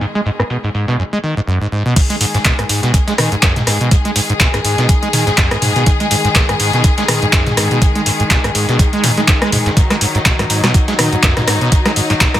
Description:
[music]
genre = acid house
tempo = 123 BPM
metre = 4/4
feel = swing 56% on 16ths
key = G# minor pentatonic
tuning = A4 = 439 Hz
[part]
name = clear symphonic string section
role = sustained chords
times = 0.0-12.4 s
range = D#3 to G#4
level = -19 LUFS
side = left 2 dB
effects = sidechain pumping
[part]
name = acid bass, saw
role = riff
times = 0.0-12.4 s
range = F#2 to G#3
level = -17 LUFS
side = right 1 dB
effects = overdrive, lush chorus, sidechain pumping
[part]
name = booming analog drum machine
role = drums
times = 0.0-12.4 s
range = crash cymbal, handclaps, hi-hat, rim click, snare drum, toms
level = -16 LUFS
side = equal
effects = overdrive, low-pass filter on hats, low-pass filter on toms, low-pass filter on snare, low-pass filter on cymbals
[part]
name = dusty soul sampler-style drum kit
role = drums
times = 0.0-12.4 s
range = hi-hat, snare drum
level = -25 LUFS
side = equal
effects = overdrive, sidechain pumping on hats, high-pass filter on hats, low-pass filter on hats, high-pass filter on snare, low-pass filter on snare, high-pass filter on room, low-pass filter on room
[part]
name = warbly tape-like pad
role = texture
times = 0.1-1.0 s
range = none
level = barely audible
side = none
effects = none
[part]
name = electronic kick drum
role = drums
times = 2.0-12.3 s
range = none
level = -14 LUFS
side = equal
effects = none
[sound]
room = light reverb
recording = none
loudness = -11 LUFS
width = side -12 dB against mid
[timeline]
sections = 0.0-2.0 A section; 2.0-12.4 B section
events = drop 2.0-12.4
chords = 0.0 G#5

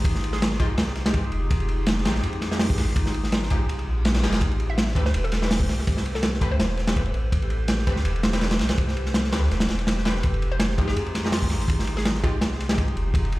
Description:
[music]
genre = drum and bass, jungle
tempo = 165 BPM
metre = 4/4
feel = swing 54% on 16ths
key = unclear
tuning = A4 = 440 Hz
[part]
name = saturated sub bass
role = bass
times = 0.0-13.4 s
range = E1 to F2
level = -26 LUFS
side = equal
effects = none
[part]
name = crunchy breakbeat drum kit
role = drums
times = 0.0-13.4 s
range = hi-hat, kick drum, ride cymbal, snare drum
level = -23 LUFS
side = equal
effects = none
[part]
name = hollow square pluck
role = melody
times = 0.3-1.0, 4.7-6.7, 10.5-12.6 s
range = F4 to E5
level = -35 LUFS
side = equal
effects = chorus, vintage 12-bit sampler grit, dub echo
[part]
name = orchestra-hit-like synth stab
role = stabs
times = 0.6-12.8 s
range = F3 to B4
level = -34 LUFS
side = equal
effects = built-in reverb, dub echo
[part]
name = reverse cymbal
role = sound effects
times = 3.8-4.4 s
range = none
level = -40 LUFS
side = left 5 dB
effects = none
[sound]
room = light reverb, studio reverb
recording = played on a big sound system in a bare room, large studio reverb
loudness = -21 LUFS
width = side -18 dB against mid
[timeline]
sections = 0.0-13.4 A section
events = reverse cymbal 3.8-4.4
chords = 0.0 Fm9; 4.4 Am9; 10.2 Fm9

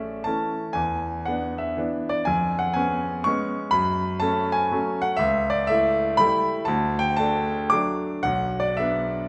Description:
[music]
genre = classical, romantic triple-time dance for piano with dotted rhythms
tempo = 106-129 BPM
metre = 3/4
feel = rubato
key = D major from 5.2 s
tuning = A4 = 441 Hz
[part]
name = warm grand piano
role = solo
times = 0.0-9.3 s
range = A1 to D6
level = -24 LUFS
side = equal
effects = none
[sound]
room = wet recital hall reverb, RT60 1.8 s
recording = none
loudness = -24 LUFS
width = mono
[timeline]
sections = 0.0-9.3 A section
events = none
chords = 0.0 A; 0.8 E7; 2.3 C#7/E#; 3.7 F#m; 5.2 A7/C#; 6.7 D; 8.3 Bm

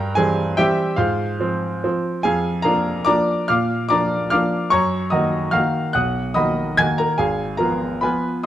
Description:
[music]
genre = classical, piano waltz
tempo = 145 BPM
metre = 3/4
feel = uneven beats, rubato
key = unclear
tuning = A4 = 440 Hz
[part]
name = clear baby grand piano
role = solo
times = 0.0-8.5 s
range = Ab1 to Ab6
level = -17 LUFS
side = equal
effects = none
[sound]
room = moderate large studio reverb, RT60 1.2 s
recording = dark, warm production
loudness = -17 LUFS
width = side -12 dB against mid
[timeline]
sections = 0.0-8.5 A section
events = none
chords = 0.0 C7/G; 1.0 Fm/Ab; 2.2 Bb7/F; 4.7 Ebm/Gb; 6.0 Bmaj7; 7.2 Fdim/Ab

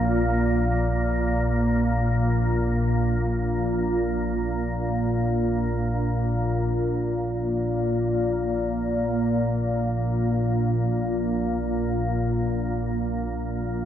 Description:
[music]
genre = ambient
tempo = free time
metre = none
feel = none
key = unclear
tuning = A4 = 441 Hz
[part]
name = organ-like drone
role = solo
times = 0.0-13.9 s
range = Bb1 to Bb2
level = -22 LUFS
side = equal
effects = ensemble chorus, built-in reverb, dub echo
[sound]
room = wet spring reverb, RT60 2.8 s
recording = echo-heavy mix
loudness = -22 LUFS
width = side -10 dB against mid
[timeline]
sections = 0.0-6.7 A section; 6.7-13.9 B section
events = none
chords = none

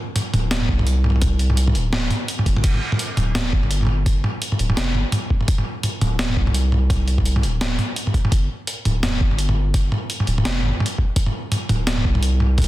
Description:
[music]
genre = half-time drum and bass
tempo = 169 BPM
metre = 4/4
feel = swing 59% on 16ths, half-time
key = unclear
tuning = A4 = 438 Hz
[part]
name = boom bap sampler-style drum kit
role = drums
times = 0.2-12.7 s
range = crash cymbal, hi-hat, snare drum, toms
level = -22 LUFS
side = equal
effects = none
[part]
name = saturated sub bass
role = bass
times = 0.3-12.7 s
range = D1 to C2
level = -20 LUFS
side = equal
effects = none
[part]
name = electronic kick drum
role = drums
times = 0.7-12.7 s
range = none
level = -20 LUFS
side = equal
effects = none
[sound]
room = little or no reverb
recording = dense, heavily limited modern master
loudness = -18 LUFS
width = side -16 dB against mid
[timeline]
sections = 0.0-12.7 A section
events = none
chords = none

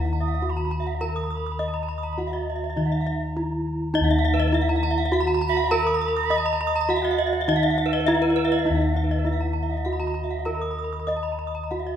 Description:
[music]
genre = Balinese gamelan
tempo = 102 BPM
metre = 4/4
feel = straight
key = Eb pelog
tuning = A4 = 439 Hz
[part]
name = gamelan-type bronze metallophone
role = melody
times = 0.0-12.0 s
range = Eb4 to Eb5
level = -26 LUFS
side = equal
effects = none
[part]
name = gamelan-type bronze metallophone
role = arpeggios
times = 0.0-11.9 s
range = Cb5-20c to Eb6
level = -29 LUFS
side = left 2 dB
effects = none
[part]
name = gamelan-type bossed gongs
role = bass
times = 0.0-12.0 s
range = Eb2 to Eb5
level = -26 LUFS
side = left 1 dB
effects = none
[part]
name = gamelan-type bronze metallophone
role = arpeggios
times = 0.1-11.9 s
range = Cb5-20c to Eb6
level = -31 LUFS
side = right 8 dB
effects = none
[part]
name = bright reedy bansuri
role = second line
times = 0.2-11.2 s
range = Eb5 to Eb6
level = -32 LUFS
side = right 6 dB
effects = none
[sound]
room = wet recital hall reverb, RT60 1.5 s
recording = minimal, uncompressed stereo recording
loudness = -21 LUFS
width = side -9 dB against mid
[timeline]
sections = 0.0-12.0 A section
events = none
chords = none

